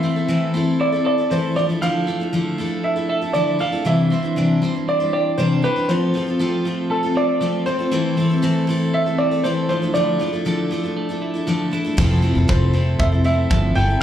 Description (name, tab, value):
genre	acoustic pop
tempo	118 BPM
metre	4/4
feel	straight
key	unclear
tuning	A4 = 440 Hz
part	clear upright piano	melody	0.0-14.0 s	A4 to G5	-23 LUFS	right 2 dB	digital delay
part	picked steel-string acoustic guitar	accompaniment	0.0-14.0 s	C3 to C5	-20 LUFS	left 2 dB	none
part	twelve-string electric guitar	arpeggios	0.0-14.0 s	E3 to A4	-26 LUFS	right 4 dB	slapback echo
part	fingered electric bass	bass	12.0-14.0 s	F1 to G1	-18 LUFS	equal	none
part	modern studio drum kit	drums	12.0-13.6 s	crash cymbal, kick drum	-22 LUFS	equal	none
room	light reverb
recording	live gig heard through the venue's PA, club reverb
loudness	-17 LUFS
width	side -10 dB against mid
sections	0.0-12.0 A section; 12.0-14.0 B section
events	none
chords	0.0 Am/E; 1.6 Dmadd9; 3.9 Cadd9; 5.9 F; 7.9 Am/E; 9.7 Dmadd9; 12.0 Fmaj7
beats	0.29 0.81 1.31 | 1.83 2.34 2.85 3.35 | 3.86 4.37 4.88 5.39 | 5.90 6.40 6.91 7.42 | 7.93 8.43 8.94 9.45 | 9.96 10.46 10.97 11.48 | 11.98 12.49 13.00 13.51 | 14.02